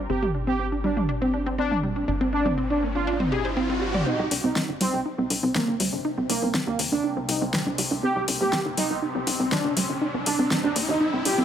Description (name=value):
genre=melodic techno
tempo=121 BPM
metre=4/4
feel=straight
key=C minor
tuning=A4 = 439 Hz
part: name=wide unison pluck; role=arpeggios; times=0.0-11.4 s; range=G3 to D5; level=-27 LUFS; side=equal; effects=digital delay
part: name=tight sequencer bass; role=bass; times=0.0-11.4 s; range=G1 to Eb2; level=-32 LUFS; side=left 1 dB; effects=high-pass filter
part: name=analog synth brass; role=melody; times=0.1-11.4 s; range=Bb3 to Ab4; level=-28 LUFS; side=right 2 dB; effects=chorus, digital delay
part: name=riser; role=sound effects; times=1.3-11.4 s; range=none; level=-34 LUFS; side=right 1 dB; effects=none
part: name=deep house drum kit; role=drums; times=0.2-11.4 s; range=hi-hat, snare drum, toms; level=-27 LUFS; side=left 1 dB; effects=overdrive, low-pass filter on toms, low-pass filter on hats, low-pass filter on snare
part: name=overtone-sweeping drone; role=drone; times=5.1-11.4 s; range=C3 to C4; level=-36 LUFS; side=left 1 dB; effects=chorus, built-in reverb, phaser
room=light reverb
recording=none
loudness=-22 LUFS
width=side -9 dB against mid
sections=0.0-4.1 A section; 4.1-11.4 B section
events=filter sweep on synth pluck 0.0-4.1, 4.1-11.4; filter sweep on analog polysynth 0.0-4.1; riser 1.3-4.1, 4.1-11.4; build-up 4.1-11.4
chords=0.0 G5; 4.1 Cm